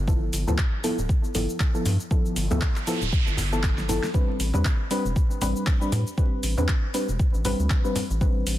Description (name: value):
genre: deep house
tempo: 118 BPM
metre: 4/4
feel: swing 57% on 16ths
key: A minor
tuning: A4 = 440 Hz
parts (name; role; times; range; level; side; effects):
- round analog bass; bass; 0.0-8.6 s; D1 to A2; -25 LUFS; equal; sidechain pumping
- deep mellow chord stab; stabs; 0.1-8.6 s; F3 to B4; -28 LUFS; left 1 dB; chorus, sidechain pumping, tape echo
- deep house drum kit; drums; 0.1-8.6 s; cabasa, handclaps, hi-hat, snare drum; -32 LUFS; equal; small room ambience
- electronic kick drum; drums; 0.1-8.3 s; none; -23 LUFS; equal; small room ambience
- congas; percussion; 0.5-8.1 s; none; -33 LUFS; equal; none
- noise sweep; sound effects; 2.5-4.1 s; none; -34 LUFS; right 5 dB; none
room: little or no reverb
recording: dense, heavily limited modern master, vinyl crackle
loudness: -22 LUFS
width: side -14 dB against mid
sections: 0.0-8.6 A section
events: filter sweep on synth stab 0.0-8.6; noise sweep 2.5-4.1; drum fill 3.6-4.1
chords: 0.0 G13; 4.1 Am11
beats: | 0.08 0.58 1.09 1.60 | 2.11 2.62 3.13 3.63 | 4.14 4.65 5.16 5.67 | 6.18 6.69 7.19 7.70 | 8.21